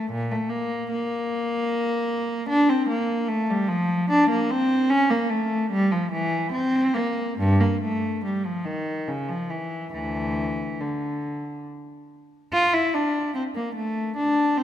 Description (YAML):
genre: classical, baroque-style suite movement for unaccompanied cello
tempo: 68-77 BPM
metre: 3/4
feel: rubato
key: D minor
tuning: A4 = 440 Hz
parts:
  - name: dark cello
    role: solo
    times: 0.0-14.6 s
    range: D2 to F4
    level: -22 LUFS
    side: equal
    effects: none
room: moderate concert hall reverb, RT60 2.3 s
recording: none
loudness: -22 LUFS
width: side -11 dB against mid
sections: 0.0-12.5 A section; 12.5-14.6 B section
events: none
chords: none